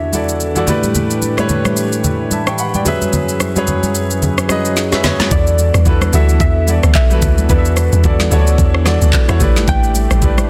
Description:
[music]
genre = amapiano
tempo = 110 BPM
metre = 4/4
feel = swing 58% on 16ths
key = E dorian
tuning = A4 = 439 Hz
[part]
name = soft round pluck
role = melody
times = 0.0-0.6, 5.3-10.5 s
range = B4 to G5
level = -25 LUFS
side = equal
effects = chorus, digital delay
[part]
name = clear baby grand piano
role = accompaniment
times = 0.0-10.5 s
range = E3 to C#6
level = -21 LUFS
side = equal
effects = none
[part]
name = warm analog pad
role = sustained chords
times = 0.0-10.5 s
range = E2 to B4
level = -24 LUFS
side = equal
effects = chorus, sidechain pumping
[part]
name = smooth R&B drum kit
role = drums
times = 0.1-10.5 s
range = handclaps, kick drum, rim click, shaker, snare drum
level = -19 LUFS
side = equal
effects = soft clipping on snare
[part]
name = congas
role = percussion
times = 0.1-10.5 s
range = none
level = -24 LUFS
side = equal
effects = none
[part]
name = deep log drum bass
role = bass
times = 5.3-10.5 s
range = A1 to E2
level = -15 LUFS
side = equal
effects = none
[sound]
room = light reverb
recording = dense, heavily limited modern master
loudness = -14 LUFS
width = mono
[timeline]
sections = 0.0-5.3 A section; 5.3-10.5 B section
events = drum fill 4.8-5.3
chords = 0.0 E9sus4; 0.7 A9sus4; 2.9 F#9sus4; 5.3 E9sus4; 9.4 A9sus4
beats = 0.40 | 0.95 1.49 2.04 2.58 | 3.13 3.68 4.22 4.77 | 5.31 5.86 6.40 6.95 | 7.49 8.04 8.59 9.13 | 9.68 10.22

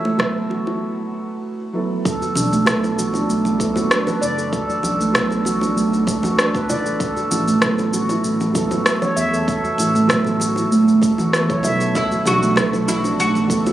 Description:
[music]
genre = organic downtempo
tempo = 97 BPM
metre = 4/4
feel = straight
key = unclear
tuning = A4 = 440 Hz
[part]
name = oud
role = melody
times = 0.0-0.8, 12.0-13.7 s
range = C#4 to F#4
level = -21 LUFS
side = equal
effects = digital delay, shimmer reverb
[part]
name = felt-muted upright piano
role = accompaniment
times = 0.0-13.7 s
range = F#3 to A4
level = -26 LUFS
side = right 3 dB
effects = sidechain pumping, ping-pong delay, shimmer reverb
[part]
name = handpan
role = arpeggios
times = 0.1-13.7 s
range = A3 to E5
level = -20 LUFS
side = right 1 dB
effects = ping-pong delay, shimmer reverb
[part]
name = bongos and congas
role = percussion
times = 0.1-13.7 s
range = none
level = -30 LUFS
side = right 2 dB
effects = none
[part]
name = electronic rim click and cabasa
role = drums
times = 0.2-13.7 s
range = none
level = -22 LUFS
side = equal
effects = none
[part]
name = electronic kick drum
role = drums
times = 2.1-13.6 s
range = none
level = -24 LUFS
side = equal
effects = none
[part]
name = smooth synth bass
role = bass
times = 2.4-13.7 s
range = F#1 to A2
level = -22 LUFS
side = right 1 dB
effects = sidechain pumping
[sound]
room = light reverb, studio reverb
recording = recorded on a phone in the room, club reverb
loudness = -16 LUFS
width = side -13 dB against mid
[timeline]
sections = 0.0-2.1 A section; 2.1-13.7 B section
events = break 0.8-2.1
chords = 0.0 A6; 2.1 Bm7; 7.0 A5; 11.9 Bm7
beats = 0.20 0.82 1.43 | 2.05 2.67 3.29 3.91 | 4.53 5.15 5.76 6.38 | 7.00 7.62 8.24 8.86 | 9.47 10.09 10.71 11.33 | 11.95 12.57 13.19

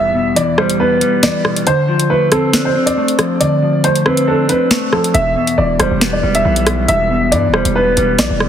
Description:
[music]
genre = hip hop, drill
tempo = 138 BPM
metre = 4/4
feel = half-time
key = E phrygian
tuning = A4 = 440 Hz
[part]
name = dark grand piano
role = melody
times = 0.0-8.5 s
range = A4 to E5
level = -16 LUFS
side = right 1 dB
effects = low-pass filter
[part]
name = mellow electric guitar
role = accompaniment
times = 0.0-8.5 s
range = E2 to D4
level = -16 LUFS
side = left 1 dB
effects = spring reverb, low-pass filter
[part]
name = drill drum kit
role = drums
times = 0.4-8.5 s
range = finger snaps, hi-hat, rim click, snare drum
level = -16 LUFS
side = equal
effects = none
[part]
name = distorted 808-style bass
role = bass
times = 5.1-8.5 s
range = E1 to G2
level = -18 LUFS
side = equal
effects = distortion
[sound]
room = moderate lush hall reverb, RT60 1.9 s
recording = heavily compressed radio sound, multiband compression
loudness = -11 LUFS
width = side -9 dB against mid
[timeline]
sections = 0.0-8.5 A section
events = break 0.0-5.1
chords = 0.0 Em; 1.7 Dm7; 5.1 Em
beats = 0.36 0.80 1.23 | 1.67 2.10 2.54 2.97 | 3.40 3.84 4.28 4.71 | 5.14 5.58 6.01 6.45 | 6.88 7.32 7.75 8.19

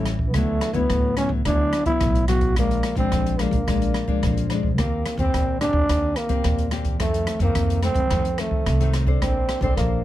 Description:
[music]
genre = samba and choro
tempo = 108 BPM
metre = 4/4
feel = straight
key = Bb major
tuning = A4 = 441 Hz
[part]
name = growling trombone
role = melody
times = 0.0-10.0 s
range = A3 to F#4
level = -25 LUFS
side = right 1 dB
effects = none
[part]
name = nylon-string guitar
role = accompaniment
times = 0.0-10.0 s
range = F2 to C5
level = -26 LUFS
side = left 6 dB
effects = none
[part]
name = upright bass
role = bass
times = 0.0-10.0 s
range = A1 to F2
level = -23 LUFS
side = right 1 dB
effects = none
[part]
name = open jazz drum kit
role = drums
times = 0.1-9.9 s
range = hi-hat, kick drum, rim click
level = -25 LUFS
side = right 1 dB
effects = none
[sound]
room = little or no reverb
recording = close, detailed microphones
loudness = -19 LUFS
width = side -14 dB against mid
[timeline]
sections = 0.0-10.0 A section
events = none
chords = 0.3 D69; 2.6 Bb7; 4.8 Eb6; 7.0 F7; 9.2 Bbmaj9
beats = | 0.34 0.90 1.46 2.01 | 2.57 3.12 3.68 4.23 | 4.79 5.34 5.89 6.45 | 7.00 7.56 8.11 8.66 | 9.22 9.77

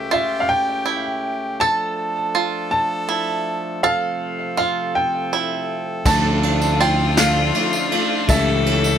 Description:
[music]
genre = indie folk with a building arrangement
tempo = 54 BPM (dotted quarters)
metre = 6/8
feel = straight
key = unclear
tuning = A4 = 441 Hz
[part]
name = clear upright piano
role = melody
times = 0.0-9.0 s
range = E5 to A5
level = -22 LUFS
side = equal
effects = digital delay
[part]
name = clear brass ensemble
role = sustained chords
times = 0.0-9.0 s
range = C#2 to A4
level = -28 LUFS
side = equal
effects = none
[part]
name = bluegrass banjo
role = arpeggios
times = 0.0-9.0 s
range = E4 to A4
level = -25 LUFS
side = right 6 dB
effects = none
[part]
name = rich fiddle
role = second line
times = 6.1-9.0 s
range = F4 to A4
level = -23 LUFS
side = left 10 dB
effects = digital delay
[part]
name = bright upright piano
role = accompaniment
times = 6.1-9.0 s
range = C#2 to D5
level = -29 LUFS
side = right 6 dB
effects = none
[part]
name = picked steel-string acoustic guitar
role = accompaniment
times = 6.1-9.0 s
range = C#3 to G4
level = -26 LUFS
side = left 5 dB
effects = none
[part]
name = fingered electric bass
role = bass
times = 6.1-9.0 s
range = C#2 to D2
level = -20 LUFS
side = equal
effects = none
[part]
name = vintage brush drum kit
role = drums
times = 6.1-8.8 s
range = kick drum, ride cymbal, snare drum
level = -21 LUFS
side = right 1 dB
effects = none
[part]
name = tambourine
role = percussion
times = 6.1-9.0 s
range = none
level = -31 LUFS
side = right 6 dB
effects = none
[sound]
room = light reverb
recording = none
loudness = -17 LUFS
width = side -9 dB against mid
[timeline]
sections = 0.0-9.0 A section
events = none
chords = 0.0 A7/C#; 1.6 Dm; 3.8 F/C; 6.1 Dm; 8.3 A7/C#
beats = 0.48 | 1.60 2.71 | 3.83 4.94 | 6.06 7.17 | 8.29

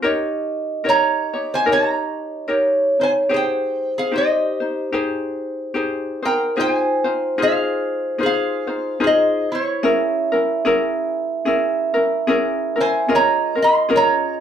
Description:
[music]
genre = Hawaiian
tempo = 74 BPM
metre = 4/4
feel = swing 60% on 8ths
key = unclear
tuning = A4 = 441 Hz
[part]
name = vibraphone with soft mallets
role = second line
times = 0.0-14.4 s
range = C5 to Fb5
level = -22 LUFS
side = right 3 dB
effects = none
[part]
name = ukulele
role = accompaniment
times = 0.0-14.4 s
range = Db4 to Db5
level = -22 LUFS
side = left 3 dB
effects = none
[part]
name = lap resonator guitar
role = melody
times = 0.9-14.4 s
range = Fb4 to C6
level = -19 LUFS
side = right 1 dB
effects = none
[sound]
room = wet small room reverb, RT60 0.5 s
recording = heard from further back in the room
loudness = -17 LUFS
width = side -8 dB against mid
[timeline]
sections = 0.0-6.6 A section; 6.6-14.4 B section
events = none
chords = 0.0 Eb7; 3.3 Abmaj7; 6.6 Fm7; 9.8 Dbm6; 13.1 Eb9sus4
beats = | 0.04 0.85 1.67 2.48 | 3.30 4.12 4.93 5.75 | 6.57 7.38 8.20 9.02 | 9.83 10.65 11.46 12.28 | 13.10 13.91

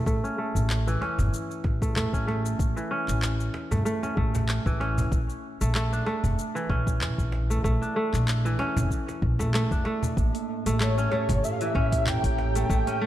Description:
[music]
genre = organic downtempo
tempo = 95 BPM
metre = 4/4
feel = swing 55% on 16ths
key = unclear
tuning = A4 = 440 Hz
[part]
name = kora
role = arpeggios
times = 0.0-13.1 s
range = E3 to D4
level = -29 LUFS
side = right 1 dB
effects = low-pass filter, tape echo
[part]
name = upright bass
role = bass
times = 0.1-12.8 s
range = F1 to F2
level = -27 LUFS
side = equal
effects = sidechain pumping
[part]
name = afro-pop drum kit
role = drums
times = 0.1-13.0 s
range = handclaps, hi-hat, shaker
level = -36 LUFS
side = left 1 dB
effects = studio reverb
[part]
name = electronic kick drum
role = drums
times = 0.1-12.8 s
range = none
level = -28 LUFS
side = equal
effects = studio reverb
[part]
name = cajon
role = percussion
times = 0.7-12.7 s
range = none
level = -32 LUFS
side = right 1 dB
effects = none
[part]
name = warbly tape-like pad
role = sustained chords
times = 10.5-13.1 s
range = A2 to Bb5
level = -33 LUFS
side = right 1 dB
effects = chorus, built-in reverb, sidechain pumping
[part]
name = bronze singing bowl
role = texture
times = 10.2-13.1 s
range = Bb3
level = -37 LUFS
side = right 10 dB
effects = none
[part]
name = breathy flute-like synth lead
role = melody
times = 10.8-13.1 s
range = C#5 to G5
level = -28 LUFS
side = left 1 dB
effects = ensemble chorus, tape echo
[sound]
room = light reverb, small room ambience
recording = dark, warm production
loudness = -24 LUFS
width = side -13 dB against mid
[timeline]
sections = 0.0-13.1 A section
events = filter sweep on kora 0.0-13.1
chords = 0.1 A; 5.1 Bbmaj7; 10.2 A7b9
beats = | 0.07 0.70 1.33 1.96 | 2.59 3.23 3.86 4.49 | 5.12 5.75 6.38 7.01 | 7.65 8.28 8.91 9.54 | 10.17 10.80 11.44 12.07 | 12.70

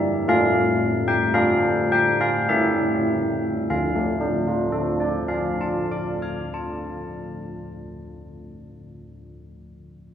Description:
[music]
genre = classical, tune for church bells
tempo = 48-59 BPM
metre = 3/4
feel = straight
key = D minor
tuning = A4 = 444 Hz
[part]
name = old church bells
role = solo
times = 0.0-8.9 s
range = D3 to F6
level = -21 LUFS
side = equal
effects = none
[sound]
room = wet church reverb, RT60 2.8 s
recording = none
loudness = -20 LUFS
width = side -9 dB against mid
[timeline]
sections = 0.0-3.7 A section; 3.7-7.5 B section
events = slowing down 0.0-3.7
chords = 0.3 D5/A; 2.5 A7; 3.7 Dm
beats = | 0.28 1.35 2.49 | 3.72 4.97 6.22

